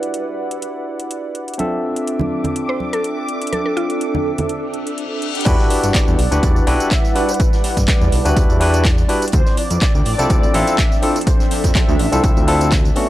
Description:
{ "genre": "deep house", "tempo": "124 BPM", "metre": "4/4", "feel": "swing 54% on 16ths", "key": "E minor", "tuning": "A4 = 440 Hz", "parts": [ { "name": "warm analog pad", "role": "sustained chords", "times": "0.0-13.1 s", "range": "F3 to C#6", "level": "-27 LUFS", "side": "equal", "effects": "chorus, sidechain pumping" }, { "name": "barky tine electric piano", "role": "stabs", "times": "0.0-13.1 s", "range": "A3 to E5", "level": "-21 LUFS", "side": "left 1 dB", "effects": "sidechain pumping, analog delay" }, { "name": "house drum kit", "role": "drums", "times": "0.0-13.1 s", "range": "crash cymbal, handclaps, hi-hat, tambourine", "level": "-25 LUFS", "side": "equal", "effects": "overdrive" }, { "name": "granular cloud pad", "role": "texture", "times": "0.0-13.1 s", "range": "D4 to E6", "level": "-26 LUFS", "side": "right 2 dB", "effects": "built-in reverb, sidechain pumping" }, { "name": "congas", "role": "percussion", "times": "1.6-4.5 s", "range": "none", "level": "-25 LUFS", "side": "right 3 dB", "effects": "none" }, { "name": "soft string machine", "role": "texture", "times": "2.0-5.5 s", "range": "D6", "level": "-30 LUFS", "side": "equal", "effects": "ensemble chorus" }, { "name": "mallet-like synth pluck", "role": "melody", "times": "2.7-4.4 s", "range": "F4 to C5", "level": "-23 LUFS", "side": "equal", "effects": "chorus, analog delay" }, { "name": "reverse cymbal and impact", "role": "sound effects", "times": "4.8-7.4 s", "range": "none", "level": "-29 LUFS", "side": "left 2 dB", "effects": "none" }, { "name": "mellow horn-like synth lead", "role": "melody", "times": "5.5-11.9 s", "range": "B4 to E5", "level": "-27 LUFS", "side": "equal", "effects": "ensemble chorus, analog delay" }, { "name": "smooth synth bass", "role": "bass", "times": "5.5-12.9 s", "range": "A1 to G2", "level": "-18 LUFS", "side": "equal", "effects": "sidechain pumping" }, { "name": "electronic kick drum", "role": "drums", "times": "5.5-12.8 s", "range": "none", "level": "-16 LUFS", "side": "equal", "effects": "none" }, { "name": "open jazz drum kit", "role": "drums", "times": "5.5-13.1 s", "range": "hi-hat, snare drum", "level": "-34 LUFS", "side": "right 2 dB", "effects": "none" } ], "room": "little or no reverb", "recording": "dry, gritty hardware recording, transformer saturation", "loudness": "-14 LUFS", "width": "side -14 dB against mid", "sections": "0.0-5.5 A section; 5.5-13.1 B section", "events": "filter sweep on tine electric piano 0.0-5.5; reverse cymbal 4.8-5.5; drop 5.5-13.1; impact 5.5-7.4", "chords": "0.0 Em9; 1.6 Dm9; 5.2 Em9; 9.3 Dm9", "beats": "0.14 0.62 1.11 | 1.59 2.08 2.56 3.04 | 3.53 4.01 4.49 4.98 | 5.46 5.95 6.43 6.91 | 7.40 7.88 8.37 8.85 | 9.33 9.82 10.30 10.78 | 11.27 11.75 12.24 12.72" }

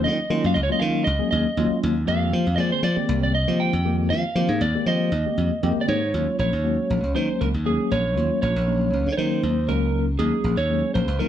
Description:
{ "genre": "electric jazz fusion", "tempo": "118 BPM", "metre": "4/4", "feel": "straight", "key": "Eb dorian", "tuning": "A4 = 438 Hz", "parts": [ { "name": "lightly driven lead guitar", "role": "melody", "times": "0.0-11.3 s", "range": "Ab4 to G5", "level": "-26 LUFS", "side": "right 3 dB", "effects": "none" }, { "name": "tine electric piano", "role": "accompaniment", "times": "0.0-11.3 s", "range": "Eb3 to Ab4", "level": "-25 LUFS", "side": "left 2 dB", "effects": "medium stereo tremolo" }, { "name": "glassy slap bass", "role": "bass", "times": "0.0-11.3 s", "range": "Bb1 to F3", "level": "-23 LUFS", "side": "equal", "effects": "none" } ], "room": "moderate large studio reverb, RT60 0.9 s", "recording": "band playing live in one room", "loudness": "-20 LUFS", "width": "side -10 dB against mid", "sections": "0.0-6.1 A section; 6.1-11.3 B section", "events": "none", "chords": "0.0 Ebm11; 2.1 Fm11; 6.1 Ebm11", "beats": "| 0.05 0.56 1.06 1.57 | 2.08 2.58 3.09 3.60 | 4.10 4.61 5.12 5.62 | 6.13 6.64 7.15 7.66 | 8.16 8.67 9.18 9.69 | 10.19 10.70 11.21" }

